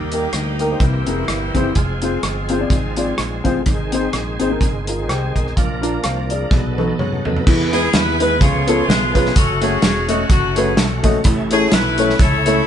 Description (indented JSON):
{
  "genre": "uptempo gospel",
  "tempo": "126 BPM",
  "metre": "4/4",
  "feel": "swing 56% on 8ths",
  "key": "E major from 7.5 s",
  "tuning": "A4 = 439 Hz",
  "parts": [
    { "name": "clear saxophone section", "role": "melody", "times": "0.0-3.6, 7.7-12.7 s", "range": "G3 to C#5", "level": "-21 LUFS", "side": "left 2 dB", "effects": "none" },
    { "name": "warm upright piano", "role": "accompaniment", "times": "0.0-12.6 s", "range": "Ab2 to F5", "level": "-20 LUFS", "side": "left 2 dB", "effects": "none" },
    { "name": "bright tonewheel organ", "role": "sustained chords", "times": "0.0-12.7 s", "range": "Eb3 to F#5", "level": "-27 LUFS", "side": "right 2 dB", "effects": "fast rotary speaker, overdrive, chorus vibrato" },
    { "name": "modern bright fingered electric bass", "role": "bass", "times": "0.0-12.6 s", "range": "E1 to F#2", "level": "-23 LUFS", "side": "equal", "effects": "none" },
    { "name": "warm soul drum kit", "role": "drums", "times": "0.1-12.6 s", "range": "crash cymbal, hi-hat, kick drum, rim click, snare drum, toms", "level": "-18 LUFS", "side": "right 1 dB", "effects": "none" }
  ],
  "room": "light reverb",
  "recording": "band playing live in one room, nothing above 10.9 kHz",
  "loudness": "-15 LUFS",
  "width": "side -9 dB against mid",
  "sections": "0.0-7.5 A section; 7.5-12.7 B section",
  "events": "drum fill 6.5-7.5",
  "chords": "0.0 Eb; 0.8 C7b13; 1.8 Fm; 3.7 Ab; 5.6 Bb; 6.5 B7; 7.5 E; 8.4 C#7b13; 9.4 F#m; 11.3 A",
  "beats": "0.34 0.81 1.28 | 1.76 2.23 2.71 3.19 | 3.66 4.14 4.61 5.09 | 5.56 6.04 6.51 6.99 | 7.46 7.94 8.41 8.88 | 9.36 9.83 10.30 10.78 | 11.25 11.73 12.20"
}